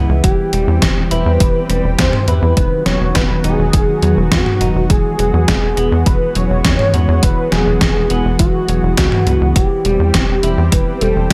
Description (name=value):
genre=synthwave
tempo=103 BPM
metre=4/4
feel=straight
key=unclear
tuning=A4 = 440 Hz
part: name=lush unison pad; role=sustained chords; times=0.0-11.3 s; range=D#3 to G4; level=-24 LUFS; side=equal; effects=chorus, sidechain pumping
part: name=semi-hollow electric guitar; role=arpeggios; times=0.0-11.3 s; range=D#3 to E4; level=-26 LUFS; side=equal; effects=digital delay
part: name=tight sequencer bass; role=bass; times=0.0-11.3 s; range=E1 to E2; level=-18 LUFS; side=equal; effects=tube saturation, sidechain pumping
part: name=unison lead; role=melody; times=0.2-11.3 s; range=F#4 to C#5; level=-21 LUFS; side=equal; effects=delay
part: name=electronic kick drum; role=drums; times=0.2-11.3 s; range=none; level=-18 LUFS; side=equal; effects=overdrive
part: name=gated 80s digital drum machine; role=drums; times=0.2-11.3 s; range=hi-hat, snare drum, toms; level=-20 LUFS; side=equal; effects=gated reverb, gated reverb snare, overdrive
room=light reverb, digital ambience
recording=none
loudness=-14 LUFS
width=mono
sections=0.0-11.3 A section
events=none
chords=0.2 C/E; 2.6 B/E; 4.9 Eadd9; 9.6 C/E